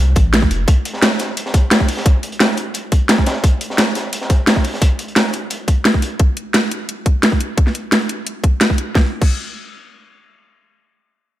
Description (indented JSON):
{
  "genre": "liquid drum and bass",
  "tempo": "174 BPM",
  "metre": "4/4",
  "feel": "straight",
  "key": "F major",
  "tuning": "A4 = 440 Hz",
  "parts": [
    { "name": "warm sub bass", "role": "bass", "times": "0.0-0.7 s", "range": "F1 to C2", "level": "-15 LUFS", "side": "equal", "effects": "none" },
    { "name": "crunchy breakbeat drum kit", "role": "drums", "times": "0.2-6.1 s", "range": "hi-hat, snare drum", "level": "-23 LUFS", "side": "equal", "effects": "high-pass filter on hats, small room reverb, high-pass filter on snare, high-pass filter on room" },
    { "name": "drum and bass drum kit", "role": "drums", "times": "0.2-9.3 s", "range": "crash cymbal, hi-hat, snare drum", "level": "-17 LUFS", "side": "equal", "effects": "overdrive, small room reverb" },
    { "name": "electronic kick drum", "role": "drums", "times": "0.2-9.3 s", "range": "none", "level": "-14 LUFS", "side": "equal", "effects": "overdrive, small room reverb" }
  ],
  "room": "light reverb, small room ambience",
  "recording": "none",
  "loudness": "-14 LUFS",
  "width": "side -14 dB against mid",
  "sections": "0.0-9.0 A section; 9.0-11.4 B section",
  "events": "none",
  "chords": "none"
}